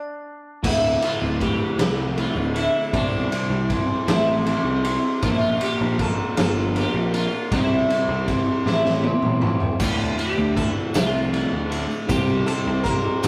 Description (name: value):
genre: psychedelic rock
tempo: 52 BPM (dotted quarters)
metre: 6/8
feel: straight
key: D minor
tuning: A4 = 440 Hz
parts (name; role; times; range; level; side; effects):
- sitar; melody; 0.0-13.3 s; D4 to Bb4; -29 LUFS; equal; none
- electric guitar at the edge of break-up; riff; 0.6-13.3 s; D2 to C5; -28 LUFS; equal; phaser
- fuzz picked electric bass; bass; 0.6-13.3 s; D1 to D2; -27 LUFS; equal; overdrive
- raw garage drum kit; drums; 0.6-13.3 s; crash cymbal, kick drum, ride cymbal, snare drum, toms; -27 LUFS; equal; none
- tambourine; percussion; 9.8-13.3 s; none; -43 LUFS; equal; none
room: moderate studio ambience, RT60 0.5 s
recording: rough rehearsal-room recording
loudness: -22 LUFS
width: mono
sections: 0.6-13.3 A section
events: stop 0.0-0.6; drum fill 8.7-9.8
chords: 0.0 N.C.; 0.6 Dsus2; 2.9 Cadd9; 5.2 Bb; 7.5 C; 9.8 Dmadd9; 12.1 C